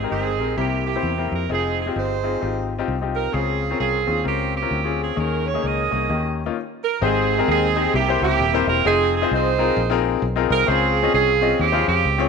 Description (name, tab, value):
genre	uptempo gospel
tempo	131 BPM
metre	4/4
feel	swing 62% on 8ths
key	Ab major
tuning	A4 = 440 Hz
part	clear saxophone section	melody	0.0-12.3 s	Bb3 to Eb5	-21 LUFS	right 10 dB	none
part	clear baby grand piano	accompaniment	0.0-12.3 s	Ab2 to F5	-23 LUFS	left 12 dB	none
part	fingered electric bass	bass	0.0-12.3 s	Eb1 to F2	-25 LUFS	equal	none
room	moderate echo chamber reverb, RT60 1.9 s, small room reverb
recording	1960s-style stereo with parts hard left and right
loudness	-18 LUFS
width	side -5 dB against mid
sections	0.0-7.0 A section; 7.0-12.3 B section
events	stop 6.6-7.0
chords	0.0 Abmaj7; 0.6 C7; 1.5 Fm7; 3.3 Dbmaj7; 5.2 Eb7sus4; 6.1 Eb7; 7.0 Abmaj7; 7.9 C7; 8.8 Fm7; 10.7 Dbmaj7